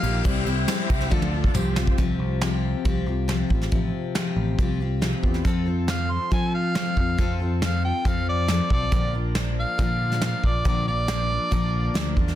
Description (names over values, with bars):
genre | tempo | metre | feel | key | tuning
folk rock and heartland rock | 138 BPM | 4/4 | straight | F major | A4 = 439 Hz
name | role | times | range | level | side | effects
warm harmonica | melody | 0.0-0.2, 5.9-12.1 s | D5 to C6 | -28 LUFS | equal | none
picked steel-string acoustic guitar | accompaniment | 0.0-12.4 s | Bb2 to Bb4 | -28 LUFS | left 5 dB | none
bright tonewheel organ | sustained chords | 0.0-2.0, 5.1-12.4 s | B3 to E5 | -36 LUFS | right 1 dB | slow rotary speaker, overdrive
picked electric bass | bass | 0.0-12.4 s | A1 to F3 | -26 LUFS | right 1 dB | none
soft brush drum kit | drums | 0.0-12.3 s | hi-hat, kick drum, ride cymbal, snare drum, toms | -25 LUFS | equal | soft clipping on snare
tambourine | percussion | 0.7-1.7 s | none | -40 LUFS | right 15 dB | none
room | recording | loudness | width
light reverb, small room ambience | dense, heavily limited modern master | -21 LUFS | side -12 dB against mid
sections
0.0-2.0 A section; 2.0-5.5 B section; 5.5-12.4 C section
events
drum fill 1.1-2.0; harmonica solo 5.5-12.4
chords
0.3 C; 1.1 Dm; 1.6 Csus4; 5.5 F; 8.9 Bb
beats
| 0.26 0.69 1.12 1.55 | 1.99 2.42 2.85 3.28 | 3.72 4.15 4.58 5.02 | 5.45 5.89 6.32 6.76 | 7.19 7.62 8.06 8.49 | 8.93 9.36 9.79 10.23 | 10.66 11.09 11.53 11.96